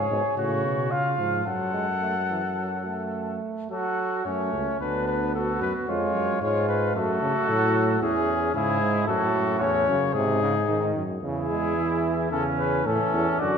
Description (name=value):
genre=classical, imitative canzona for brass ensemble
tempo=111 BPM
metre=4/4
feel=straight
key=F# minor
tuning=A4 = 442 Hz
part: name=mellow trumpet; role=melody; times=0.0-13.6 s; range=G#4 to F#5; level=-27 LUFS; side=left 6 dB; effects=none
part: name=warm flugelhorn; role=second line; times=0.0-13.6 s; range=C#4 to A4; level=-28 LUFS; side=right 4 dB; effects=none
part: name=mellow bass trombone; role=bass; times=0.0-13.6 s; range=C#2 to C#3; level=-29 LUFS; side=right 1 dB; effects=none
part: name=clear trombone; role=accompaniment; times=0.1-13.6 s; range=G#2 to B3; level=-30 LUFS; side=right 2 dB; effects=none
room=wet scoring stage reverb, RT60 1.7 s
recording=minimal, uncompressed stereo recording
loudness=-22 LUFS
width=side -7 dB against mid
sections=0.0-3.7 A section; 3.7-12.3 B section; 12.3-13.6 C section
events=none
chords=0.4 F#m/A; 0.9 C#; 1.5 F#m; 4.8 Bm/D; 5.9 C#/E#; 7.0 F#m; 8.0 C#m/E; 9.1 F#m; 10.2 G#; 11.2 C#m/E; 12.3 A/E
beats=0.38 0.91 | 1.47 2.03 2.59 3.15 | 3.71 4.26 4.80 5.34 | 5.88 6.42 6.95 7.49 | 8.02 8.54 9.08 9.61 | 10.15 10.69 11.23 11.77 | 12.31 12.86 13.40